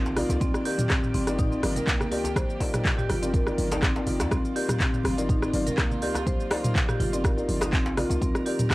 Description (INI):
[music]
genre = afro house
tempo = 123 BPM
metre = 4/4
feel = swing 53% on 16ths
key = C minor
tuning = A4 = 442 Hz
[part]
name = rich chamber string section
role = sustained chords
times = 0.0-8.7 s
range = Eb3 to D5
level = -37 LUFS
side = right 1 dB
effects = sidechain pumping, cassette tape
[part]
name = marimba with medium hard mallets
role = arpeggios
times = 0.0-8.7 s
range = Bb3 to C5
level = -29 LUFS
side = equal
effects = sidechain pumping, cassette tape, analog delay
[part]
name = felt-muted upright piano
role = stabs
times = 0.0-8.6 s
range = Eb4 to D5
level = -34 LUFS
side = left 2 dB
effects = sidechain pumping, cassette tape, analog delay
[part]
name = warm 808-style bass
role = bass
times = 0.0-8.3 s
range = G1 to F2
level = -30 LUFS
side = equal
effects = sidechain pumping
[part]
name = afro-pop drum kit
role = drums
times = 0.1-8.7 s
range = handclaps, hi-hat, rim click, shaker, toms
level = -28 LUFS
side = equal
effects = small room ambience, cassette tape
[part]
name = djembe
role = percussion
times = 0.1-8.2 s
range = none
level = -36 LUFS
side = left 1 dB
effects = none
[part]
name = congas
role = percussion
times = 0.2-8.7 s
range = none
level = -37 LUFS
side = right 1 dB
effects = none
[part]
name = electronic kick drum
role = drums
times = 0.4-8.7 s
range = none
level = -26 LUFS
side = equal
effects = small room ambience, cassette tape
[sound]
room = light reverb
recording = home recording on cassette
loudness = -23 LUFS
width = side -19 dB against mid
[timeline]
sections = 0.0-8.7 A section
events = none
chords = 0.0 Cm11